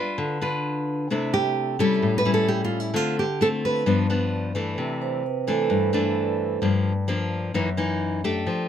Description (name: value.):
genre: bossa nova.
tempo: 130 BPM.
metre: 4/4.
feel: straight.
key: C major.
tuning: A4 = 440 Hz.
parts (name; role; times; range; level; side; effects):
nylon-string guitar; melody; 0.0-4.5 s; E4 to D5; -24 LUFS; right 3 dB; none.
nylon-string guitar; accompaniment; 0.0-8.7 s; F#2 to B4; -23 LUFS; left 3 dB; none.
vibraphone with medium mallets; accompaniment; 5.0-6.6 s; A4 to C5; -25 LUFS; right 15 dB; none.
room: little or no reverb.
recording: close, detailed microphones.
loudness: -22 LUFS.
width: side -9 dB against mid.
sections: 0.0-4.8 A section; 4.8-8.7 B section.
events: vibraphone solo 4.8-8.7.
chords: 0.0 G7; 1.1 C69; 2.0 A7; 2.9 Dm7; 3.9 G7; 4.8 C69; 6.6 Gm7; 7.5 F#6.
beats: 0.18 0.64 | 1.10 1.56 2.02 2.48 | 2.94 3.40 3.87 4.33 | 4.79 5.25 5.71 6.17 | 6.63 7.09 7.55 8.01 | 8.47.